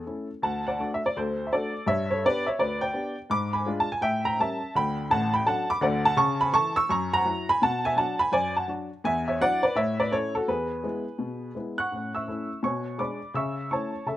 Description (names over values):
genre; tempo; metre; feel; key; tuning
jazz, stride piano; 167 BPM; 4/4; swing 63% on 8ths; D major, A major from 6.2 s; A4 = 438 Hz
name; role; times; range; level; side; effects
warm upright piano; solo; 0.0-14.2 s; A1 to F#6; -24 LUFS; equal; none
room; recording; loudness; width
little or no reverb; recorded outdoors, with no room sound; -24 LUFS; side -14 dB against mid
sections
0.4-11.9 A section; 11.9-14.2 B section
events
none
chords
0.4 D; 1.9 G; 3.3 G#dim7; 4.0 A7b9; 4.7 D; 6.2 A/C#; 6.9 F#7; 7.6 Bm; 9.0 Esus2; 9.8 A; 10.5 E; 11.9 A; 12.6 G#dim/B; 13.4 A/C#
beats
0.07 | 0.43 0.79 1.14 1.50 | 1.86 2.22 2.58 2.94 | 3.30 3.66 4.02 4.38 | 4.74 5.09 5.45 5.81 | 6.17 6.53 6.89 7.25 | 7.61 7.97 8.33 8.69 | 9.04 9.40 9.76 10.12 | 10.48 10.84 11.20 11.56 | 11.91 12.27 12.63 12.99 | 13.35 13.71 14.07